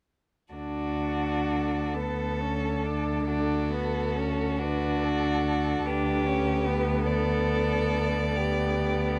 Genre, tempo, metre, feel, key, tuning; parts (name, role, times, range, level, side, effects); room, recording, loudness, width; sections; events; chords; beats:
classical, slow romantic movement for string quartet; 41-50 BPM (dotted quarters); 12/8; rubato; D major; A4 = 441 Hz
rich violin; melody; 0.5-9.2 s; F#4 to D5; -38 LUFS; equal
rich violin; second line; 0.5-9.2 s; F#4 to A4; -34 LUFS; equal
rich viola; accompaniment; 0.5-9.2 s; B3 to D4; -32 LUFS; equal
rich cello; bass; 0.5-9.2 s; D2; -32 LUFS; equal
light reverb; close, detailed microphones; -27 LUFS; mono
0.5-9.2 A section
0.5 D
| 0.54 1.95 3.27 4.60 | 5.86 7.07 8.36